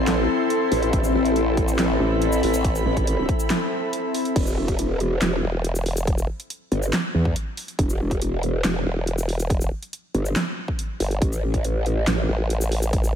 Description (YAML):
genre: heavy wobble dubstep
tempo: 140 BPM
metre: 4/4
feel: half-time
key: unclear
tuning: A4 = 441 Hz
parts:
  - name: evolving wavetable pad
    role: sustained chords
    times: 0.0-4.3 s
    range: C4 to A4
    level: -25 LUFS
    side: left 3 dB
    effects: chorus, built-in reverb, sidechain pumping
  - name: formant-sweep wobble bass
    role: bass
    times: 0.0-2.8, 5.4-6.3, 8.9-13.1 s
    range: E1 to A1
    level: -23 LUFS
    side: equal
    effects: chorus, overdrive
  - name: airy breathy pad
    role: texture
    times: 0.0-4.4 s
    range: C4 to C6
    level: -28 LUFS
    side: right 1 dB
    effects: chorus, sidechain pumping
  - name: big-room dance drum kit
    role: drums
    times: 0.1-13.1 s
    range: crash cymbal, handclaps, hi-hat, shaker, snare drum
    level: -28 LUFS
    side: right 1 dB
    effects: overdrive
  - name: growl bass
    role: bass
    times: 0.7-12.3 s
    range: E1 to E2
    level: -22 LUFS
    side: equal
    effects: chorus, overdrive
  - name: electronic kick drum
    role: drums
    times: 0.9-13.0 s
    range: none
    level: -24 LUFS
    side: equal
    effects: overdrive
room: light reverb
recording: none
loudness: -20 LUFS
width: side -8 dB against mid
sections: 0.0-4.4 A section; 4.4-13.2 A section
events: drop 0.0-4.4, 4.4-13.2; break 3.5-4.4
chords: 0.0 Am; 4.4 N.C.